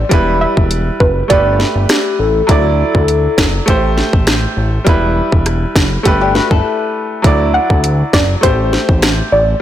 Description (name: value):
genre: dancehall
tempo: 101 BPM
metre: 4/4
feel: straight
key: unclear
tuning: A4 = 438 Hz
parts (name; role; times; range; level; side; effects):
- bright grand piano; accompaniment; 0.0-9.6 s; F#3 to D5; -17 LUFS; right 2 dB; none
- fat analog bass; bass; 0.0-9.6 s; E1 to D2; -16 LUFS; equal; none
- island pop drum kit; drums; 0.1-9.2 s; finger snaps, hi-hat, kick drum, rim click, snare drum; -13 LUFS; equal; soft clipping on snare
- soft round pluck; melody; 0.4-1.7, 7.5-9.5 s; B4 to F#5; -16 LUFS; right 1 dB; chorus, ping-pong delay
- hollow clarinet-like synth lead; second line; 1.9-3.6 s; G4 to A4; -17 LUFS; left 6 dB; chorus, ping-pong delay
- flamenco guitar; arpeggios; 6.2-7.2 s; D4 to B4; -16 LUFS; left 9 dB; none
room: little or no reverb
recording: blown-out, overdriven recording, overdrive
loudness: -10 LUFS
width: side -11 dB against mid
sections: 0.0-9.6 A section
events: break 6.6-7.2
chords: 0.1 Em; 1.3 Gadd9; 2.5 Dadd9; 3.7 Am7; 4.9 Em; 6.1 Gadd9; 7.2 Dadd9; 8.4 Am7